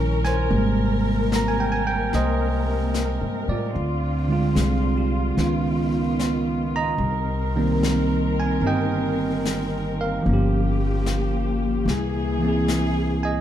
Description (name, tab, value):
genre	jazz ballad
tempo	74 BPM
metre	4/4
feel	swing 67% on 8ths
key	unclear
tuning	A4 = 440 Hz
part	bell-like tine electric piano	accompaniment	0.0-13.4 s	C3 to Bb5	-24 LUFS	right 3 dB	none
part	dark studio cello section	sustained chords	0.0-13.4 s	C3 to Bb4	-27 LUFS	left 2 dB	none
part	upright bass	bass	0.0-13.4 s	G1 to A2	-24 LUFS	left 1 dB	none
part	jazz brush drum kit	drums	0.2-13.4 s	brushed snare drum, hi-hat, snare drum	-32 LUFS	left 4 dB	none
room	moderate large studio reverb, RT60 1.0 s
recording	dark, warm production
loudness	-20 LUFS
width	side -10 dB against mid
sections	0.0-13.4 A section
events	none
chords	0.0 Eb7b9; 0.5 Abmaj9; 3.7 Dm7b5; 5.4 Db9; 7.0 Cm7; 10.3 Gm7b5; 11.9 C7b13